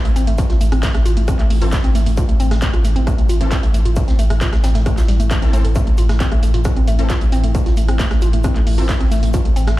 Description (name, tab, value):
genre	driving peak-time techno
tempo	134 BPM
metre	4/4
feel	straight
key	A minor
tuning	A4 = 441 Hz
part	metallic inharmonic drone	drone	0.0-9.8 s	A2	-27 LUFS	equal	chorus, built-in reverb, sidechain pumping
part	woody wave-folded pluck	riff	0.1-9.7 s	G3 to A4	-24 LUFS	equal	chorus, overdrive, sidechain pumping, tape echo
part	techno drum kit	drums	0.1-9.8 s	handclaps, hi-hat, rim click	-28 LUFS	equal	sidechain pumping on hats, sidechain pumping on cymbals
part	vintage brush drum kit	drums	0.1-9.8 s	hi-hat, shaker, snare drum	-36 LUFS	right 1 dB	sidechain pumping on hats, high-pass filter on hats, high-pass filter on snare, sidechain pumping on perc, high-pass filter on perc, high-pass filter on room
part	saturated sub bass	bass	0.2-9.8 s	A1	-16 LUFS	equal	overdrive, sidechain pumping, low-pass filter
part	electronic kick drum	drums	0.4-9.4 s	none	-16 LUFS	equal	distortion
part	rave stab	stabs	1.6-8.9 s	E3 to A4	-32 LUFS	left 2 dB	none
room	digital ambience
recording	played on a big sound system in a bare room, large studio reverb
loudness	-13 LUFS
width	side -16 dB against mid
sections	0.0-9.8 A section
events	none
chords	0.0 Am